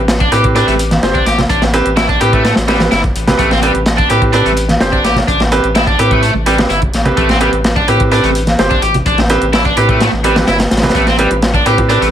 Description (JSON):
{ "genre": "breakbeat, breaks", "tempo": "127 BPM", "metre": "4/4", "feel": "straight", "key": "A minor", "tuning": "A4 = 441 Hz", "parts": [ { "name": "saturated sub bass", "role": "bass", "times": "0.0-12.1 s", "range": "G1 to A2", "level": "-17 LUFS", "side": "equal", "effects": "tube saturation" }, { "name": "crunchy breakbeat drum kit", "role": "drums", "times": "0.1-12.1 s", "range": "hi-hat, kick drum, snare drum", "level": "-15 LUFS", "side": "equal", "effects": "none" }, { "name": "electronic hi-hat", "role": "drums", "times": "0.1-12.0 s", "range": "none", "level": "-29 LUFS", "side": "right 3 dB", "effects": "none" }, { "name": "sludgy distorted guitar", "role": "riff", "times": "0.2-12.1 s", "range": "G3 to G4", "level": "-15 LUFS", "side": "left 1 dB", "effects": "overdrive, ping-pong delay" }, { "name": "bright concert grand piano", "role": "stabs", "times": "0.3-12.1 s", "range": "C4 to C5", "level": "-16 LUFS", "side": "right 2 dB", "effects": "vintage 12-bit sampler grit, ping-pong delay" }, { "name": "congas and bongos", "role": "percussion", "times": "0.9-11.9 s", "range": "none", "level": "-19 LUFS", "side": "right 2 dB", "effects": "none" } ], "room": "light reverb", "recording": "vinyl crackle", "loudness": "-9 LUFS", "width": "side -10 dB against mid", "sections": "0.0-12.1 A section", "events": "kick drops out 10.0-11.0", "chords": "0.0 Am9" }